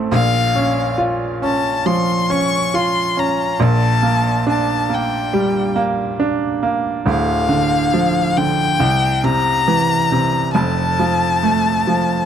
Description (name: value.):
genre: pop.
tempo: 69 BPM.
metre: 4/4.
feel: straight.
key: unclear.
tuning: A4 = 442 Hz.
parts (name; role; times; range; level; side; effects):
bright baby grand piano; accompaniment; 0.0-12.3 s; D1 to F4; -16 LUFS; right 2 dB; none.
bright violin; melody; 0.1-12.3 s; F5 to Db6; -19 LUFS; left 5 dB; none.
room: light reverb.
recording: dry, close 1970s-style studio recording.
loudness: -15 LUFS.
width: side -9 dB against mid.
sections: 0.0-12.3 A section.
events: none.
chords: 0.1 Bbm; 3.6 Gm/Bb; 7.1 Dm; 8.8 C; 10.6 F.